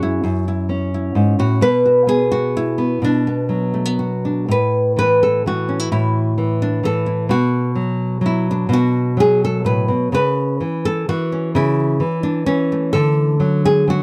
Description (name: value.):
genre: folk, solo fingerstyle acoustic guitar.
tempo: 128 BPM.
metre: 3/4.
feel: rubato.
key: A major.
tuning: A4 = 440 Hz.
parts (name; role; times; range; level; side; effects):
nylon-string guitar; solo; 0.0-14.0 s; F#2 to B4; -18 LUFS; equal; none.
room: little or no reverb.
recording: dry, close 1970s-style studio recording.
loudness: -18 LUFS.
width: mono.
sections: 0.0-4.5 A section; 4.5-14.0 B section.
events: none.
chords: 0.0 F#m7; 1.6 Bm; 4.5 A5; 7.3 Bm; 10.1 A/C#; 12.9 Dadd9.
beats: | 0.22 0.69 1.15 | 1.62 2.08 2.56 | 3.03 3.51 4.00 | 4.49 4.97 5.45 | 5.92 6.38 6.83 | 7.29 7.76 8.23 | 8.70 9.17 9.65 | 10.13 10.61 11.09 | 11.55 12.01 12.47 | 12.93 13.40 13.87.